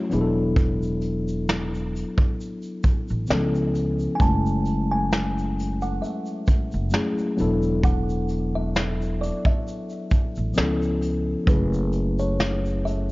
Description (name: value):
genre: lo-fi hip hop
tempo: 66 BPM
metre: 4/4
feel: swing 55% on 16ths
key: F# minor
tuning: A4 = 440 Hz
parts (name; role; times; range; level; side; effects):
- mellow tine electric piano; accompaniment; 0.0-13.1 s; E3 to A4; -26 LUFS; left 2 dB; low-pass filter
- upright bass; bass; 0.1-13.1 s; E1 to C#2; -26 LUFS; equal; none
- vintage brush drum kit; drums; 0.1-13.1 s; hi-hat, kick drum, shaker, snare drum; -22 LUFS; equal; none
- kalimba; melody; 4.2-13.1 s; B4 to A5; -31 LUFS; right 1 dB; low-pass filter
room: light reverb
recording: dark, warm production, nothing above 7.5 kHz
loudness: -21 LUFS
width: side -20 dB against mid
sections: 0.0-13.1 A section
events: none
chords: 0.1 E9sus4; 3.3 C#7alt; 4.2 F#m9; 7.4 E9sus4; 10.6 C#7alt; 11.5 F#m9